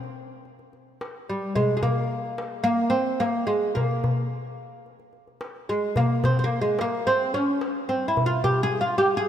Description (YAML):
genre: Arabic maqam ensemble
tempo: 109 BPM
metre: 4/4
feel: straight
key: unclear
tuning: A4 = 440 Hz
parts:
  - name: darbuka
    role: percussion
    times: 0.0-8.9 s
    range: none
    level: -27 LUFS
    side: left 1 dB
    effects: none
  - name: oud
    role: melody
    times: 1.3-9.3 s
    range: G3 to Ab4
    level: -23 LUFS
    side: right 1 dB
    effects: none
room: moderate lush hall reverb, RT60 2.6 s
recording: rough home demo mix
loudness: -22 LUFS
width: side -10 dB against mid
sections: 0.0-9.3 A section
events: none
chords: none